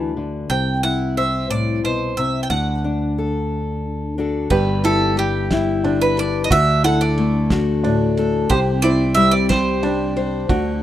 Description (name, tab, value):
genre	acoustic folk duo or small band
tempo	60 BPM (dotted quarters)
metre	6/8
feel	straight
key	G major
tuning	A4 = 439 Hz
part	bowl-back mandolin	melody	0.0-10.1 s	G4 to A5	-21 LUFS	right 3 dB	none
part	fingerpicked steel-string acoustic guitar	accompaniment	0.0-10.8 s	G2 to C5	-21 LUFS	left 3 dB	none
part	sustaining fretless electric bass	bass	0.0-10.8 s	G1 to D2	-23 LUFS	right 1 dB	none
part	warm upright piano	arpeggios	4.5-10.8 s	D4 to G4	-23 LUFS	right 2 dB	none
part	cloth-damped thuddy drum kit	drums	4.5-10.7 s	crash cymbal, kick drum, ride cymbal, snare drum	-24 LUFS	right 1 dB	none
room	light reverb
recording	rough home demo mix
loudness	-16 LUFS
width	side -12 dB against mid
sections	0.0-4.5 A section; 4.5-10.8 B section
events	mandolin solo 4.5-10.8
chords	0.0 D6; 0.5 C; 2.5 D; 4.5 G6; 6.5 Dadd9; 8.5 C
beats	| 0.50 1.50 | 2.50 3.50 | 4.50 5.50 | 6.50 7.50 | 8.50 9.50 | 10.50